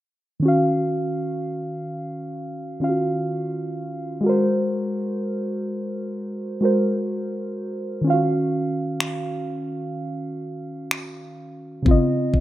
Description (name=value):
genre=contemporary R&B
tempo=63 BPM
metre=4/4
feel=straight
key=Eb dorian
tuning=A4 = 437 Hz
part: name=muted felt-like synth keys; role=accompaniment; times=0.4-12.4 s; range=Db3 to F5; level=-22 LUFS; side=equal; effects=chorus
part: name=smooth R&B drum kit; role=drums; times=9.0-12.4 s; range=finger snaps, kick drum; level=-19 LUFS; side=equal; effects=none
room=moderate plate reverb, RT60 2.0 s, digital ambience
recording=rough home demo mix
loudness=-22 LUFS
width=side -14 dB against mid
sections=0.4-12.4 A section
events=none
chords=0.4 Ebm9; 4.2 Ab9; 8.1 Ebm9; 11.9 Dbmaj9